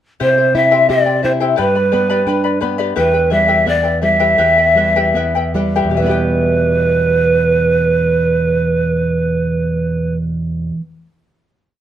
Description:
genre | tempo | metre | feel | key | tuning
andean folk, Andean ensemble | 70-87 BPM | 2/4 | straight | E minor | A4 = 440 Hz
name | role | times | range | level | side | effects
breathy large pan pipes | melody | 0.2-10.1 s | B4 to E5 | -14 LUFS | right 1 dB | none
charango | accompaniment | 0.2-11.0 s | E4 to B5 | -19 LUFS | left 7 dB | none
nylon-string guitar | accompaniment | 0.2-10.9 s | E2 to G4 | -18 LUFS | right 2 dB | none
room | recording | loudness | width
moderate small room reverb, RT60 0.6 s | none | -12 LUFS | side -10 dB against mid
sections
0.2-6.0 A section; 6.0-9.4 final chord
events
slowing down 3.0-6.0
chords
0.2 C; 1.6 G; 3.0 Em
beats
| 0.20 0.90 | 1.58 2.27 | 2.96 3.66 | 4.38 5.14 | 5.96 6.82 | 7.68 8.53

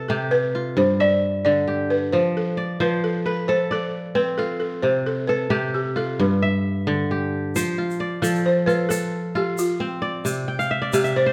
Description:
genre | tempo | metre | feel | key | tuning
west african traditional, West African string and xylophone music | 89 BPM (dotted quarters) | 12/8 | straight | F lydian | A4 = 440 Hz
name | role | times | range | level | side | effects
balafon | melody | 0.0-11.3 s | F4 to D5 | -25 LUFS | equal | none
kora | arpeggios | 0.0-11.3 s | G2 to G5 | -25 LUFS | equal | none
egg shaker | percussion | 7.6-11.1 s | none | -36 LUFS | equal | none
room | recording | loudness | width
moderate recital hall reverb, RT60 1.4 s | none | -22 LUFS | mono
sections
0.0-7.5 A section; 7.5-11.3 B section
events
kora fill 10.5-11.3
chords
0.0 C5; 0.8 G5; 2.1 F; 4.8 C5; 6.2 G; 7.5 F; 10.2 Cadd9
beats
0.09 0.77 1.45 | 2.13 2.81 3.48 4.16 | 4.84 5.51 6.19 6.87 | 7.54 8.22 8.90 9.57 | 10.25 10.92

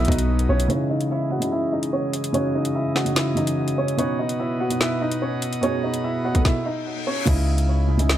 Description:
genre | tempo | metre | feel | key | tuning
hip hop, drill | 146 BPM | 4/4 | half-time | C# minor | A4 = 441 Hz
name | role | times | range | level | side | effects
dark upright piano | melody | 0.0-7.3 s | C#4 to F#5 | -26 LUFS | equal | low-pass filter, analog delay
felt-muted upright piano | accompaniment | 0.0-8.2 s | B2 to A4 | -25 LUFS | right 1 dB | low-pass filter, analog delay
chamber organ, principal chorus | sustained chords | 0.0-6.4 s | B2 to D#5 | -30 LUFS | left 1 dB | low-pass filter
long sustained 808-style bass | bass | 0.0-0.7, 7.3-8.2 s | B1 to C#2 | -20 LUFS | equal | none
drill drum kit | drums | 0.0-8.2 s | crash cymbal, hi-hat, kick drum, snare drum | -24 LUFS | equal | none
reverse cymbal | sound effects | 6.7-7.3 s | none | -32 LUFS | left 8 dB | none
room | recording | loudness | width
light reverb, studio reverb | echo-heavy mix | -20 LUFS | side -12 dB against mid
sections
0.7-7.3 A section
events
filter sweep 0.7-7.3; reverse cymbal 6.7-7.3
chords
0.0 B; 0.7 C#madd9; 4.0 B; 7.3 C#madd9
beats
0.29 | 0.70 1.11 1.52 1.93 | 2.34 2.75 3.16 3.57 | 3.98 4.40 4.81 5.22 | 5.63 6.04 6.45 6.86 | 7.27 7.68 8.10

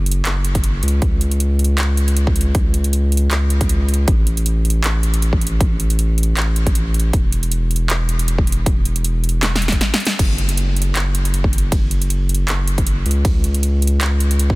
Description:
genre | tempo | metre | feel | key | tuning
future bass | 157 BPM | 4/4 | swing 55% on 16ths, half-time | unclear | A4 = 442 Hz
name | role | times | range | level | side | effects
saturated sub bass | bass | 0.0-14.6 s | E1 to C#2 | -17 LUFS | equal | sidechain pumping
big-room dance drum kit | drums | 0.1-14.5 s | crash cymbal, handclaps, hi-hat, ride cymbal, snare drum | -23 LUFS | right 1 dB | none
electronic kick drum | drums | 0.6-14.6 s | none | -17 LUFS | equal | none
room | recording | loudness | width
little or no reverb | dense, heavily limited modern master | -15 LUFS | side -22 dB against mid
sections
0.0-14.6 A section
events
drum fill 9.4-10.2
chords
none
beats
0.26 0.64 | 1.02 1.40 1.78 2.17 | 2.55 2.93 3.31 3.69 | 4.08 4.46 4.84 5.22 | 5.61 5.99 6.37 6.75 | 7.13 7.52 7.90 8.28 | 8.66 9.04 9.43 9.81 | 10.19 10.57 10.96 11.34 | 11.72 12.10 12.48 12.87 | 13.25 13.63 14.01 14.39

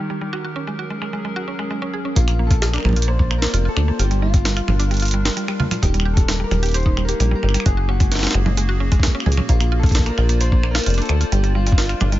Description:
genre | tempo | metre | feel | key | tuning
IDM | 131 BPM | 4/4 | straight | Bb major | A4 = 440 Hz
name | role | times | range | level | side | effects
warbly tape-like pad | sustained chords | 0.0-12.2 s | Eb3 to D5 | -29 LUFS | left 1 dB | chorus, built-in reverb, sidechain pumping
mallet-like synth pluck | arpeggios | 0.0-12.2 s | G3 to Ab4 | -27 LUFS | right 3 dB | chorus, digital delay
jungle sampler-style drum kit | drums | 0.3-12.2 s | congas, finger snaps, hi-hat, shaker, snare drum | -24 LUFS | right 1 dB | low-pass filter on snare, low-pass filter on hats, low-pass filter on perc, low-pass filter on room
electric guitar at the edge of break-up | melody | 2.2-12.2 s | F4 to C5 | -28 LUFS | left 2 dB | warbly pitch drift, digital delay
deep acid bass | bass | 2.2-12.2 s | Eb1 to D2 | -18 LUFS | equal | none
electronic kick drum | drums | 2.2-11.8 s | none | -17 LUFS | equal | none
room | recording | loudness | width
little or no reverb | nothing above 7.6 kHz | -16 LUFS | side -15 dB against mid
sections
0.0-2.2 A section; 2.2-12.2 B section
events
none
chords
0.3 Gbadd9; 2.2 Bbadd9; 4.0 Gm7; 5.8 Eb; 7.7 Gbadd9; 9.5 Bbadd9; 11.3 Gm7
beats
| 0.33 0.79 1.25 1.70 | 2.16 2.62 3.08 3.54 | 4.00 4.45 4.91 5.37 | 5.83 6.29 6.74 7.20 | 7.66 8.12 8.57 9.03 | 9.49 9.95 10.41 10.87 | 11.32 11.78

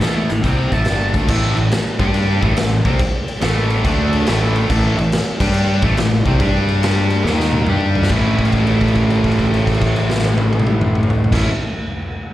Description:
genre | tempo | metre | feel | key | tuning
blues rock power trio and southern rock | 141 BPM | 4/4 | swing 66% on 8ths | A mixolydian | A4 = 439 Hz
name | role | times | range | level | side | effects
octave-fuzz lead guitar | melody | 0.0-1.1 s | E5 to A5 | -25 LUFS | equal | distortion, analog delay
distorted electric guitar | riff | 0.0-11.5 s | G2 to G4 | -19 LUFS | equal | overdrive
fuzz fingered electric bass | bass | 0.0-11.5 s | G1 to G2 | -18 LUFS | equal | overdrive
raw garage drum kit | drums | 0.0-11.4 s | crash cymbal, hi-hat, kick drum, snare drum, toms | -19 LUFS | equal | none
room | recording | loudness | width
studio reverb | live gig heard through the venue's PA, recital hall reverb | -14 LUFS | side -14 dB against mid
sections
0.0-1.3 A section; 1.3-8.1 B section; 8.1-11.5 C section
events
drum fill 7.3-8.1; held note 8.1-11.3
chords
0.0 A5; 1.9 G5; 2.4 A5; 3.8 D5; 4.3 A5; 5.3 G5; 5.8 A5; 6.4 G5; 7.3 D#5; 7.7 G5; 8.1 A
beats
0.01 0.43 0.86 | 1.29 1.71 2.14 2.57 | 2.99 3.42 3.84 4.27 | 4.70 5.12 5.55 5.97 | 6.40 6.83 7.25 7.68 | 8.10 8.53 8.96 9.38 | 9.81 10.23 10.66 11.09

